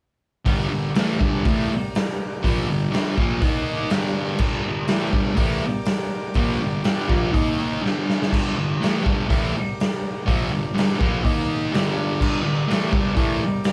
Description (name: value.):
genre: garage rock duo or trio.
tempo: 122 BPM.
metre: 4/4.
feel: straight.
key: G minor.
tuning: A4 = 442 Hz.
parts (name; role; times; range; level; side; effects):
combo organ; sustained chords; 0.5-13.7 s; Eb4 to Bb5; -35 LUFS; equal; none.
thick fuzz guitar; riff; 0.5-13.4 s; G2 to Eb4; -25 LUFS; equal; distortion.
raw garage drum kit; drums; 0.5-13.7 s; crash cymbal, hi-hat, kick drum, snare drum; -25 LUFS; equal; none.
room: light reverb.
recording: band playing live in one room.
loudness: -22 LUFS.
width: mono.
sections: 0.5-13.7 A section.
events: transistor combo organ fill 7.3-8.3; drum fill 7.8-8.3.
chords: 0.5 Gm; 3.4 Eb5; 3.9 Gm; 7.3 Eb5; 7.8 Gm; 11.2 Eb5; 11.7 Gm.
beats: | 0.47 0.96 1.45 1.94 | 2.43 2.93 3.42 3.91 | 4.40 4.89 5.39 5.88 | 6.37 6.86 7.35 7.84 | 8.33 8.81 9.30 9.79 | 10.27 10.76 11.24 11.72 | 12.21 12.69 13.17 13.65.